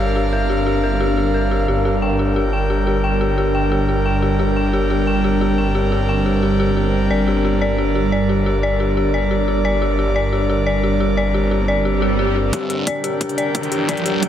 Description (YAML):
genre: dark technical drum and bass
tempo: 177 BPM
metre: 4/4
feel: straight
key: G minor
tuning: A4 = 437 Hz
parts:
  - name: deep dark ambient pad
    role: sustained chords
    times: 0.0-14.3 s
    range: G3 to C5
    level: -23 LUFS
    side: right 2 dB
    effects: chorus, built-in reverb, sidechain pumping
  - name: dark detuned synth bell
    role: arpeggios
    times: 0.0-14.3 s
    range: G4 to G5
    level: -22 LUFS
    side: left 4 dB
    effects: chorus, sidechain pumping, low-pass filter, dub echo
  - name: phased detuned saw bass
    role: bass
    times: 0.0-14.2 s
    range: G1 to D2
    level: -21 LUFS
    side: equal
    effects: phaser, tube saturation, sidechain pumping, high-pass filter
  - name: airy breathy pad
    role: texture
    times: 0.0-14.3 s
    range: D4 to G5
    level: -22 LUFS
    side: right 1 dB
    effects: chorus, sidechain pumping
  - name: swell and riser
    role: sound effects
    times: 12.0-14.3 s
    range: none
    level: -25 LUFS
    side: right 4 dB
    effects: none
  - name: electronic hi-hat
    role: drums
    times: 12.5-14.3 s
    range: none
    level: -27 LUFS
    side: left 2 dB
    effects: low-pass filter on hats
  - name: electronic kick drum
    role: drums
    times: 12.5-14.3 s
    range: none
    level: -24 LUFS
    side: equal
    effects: high-pass filter on kick
room: moderate digital room reverb, RT60 1.1 s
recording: none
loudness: -16 LUFS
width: side -10 dB against mid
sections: 0.0-12.5 A section; 12.5-14.3 B section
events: filter sweep on ambient pad 0.0-12.5; swell 12.0-12.5; build-up 12.5-14.3; riser 13.2-14.3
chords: 0.0 Gm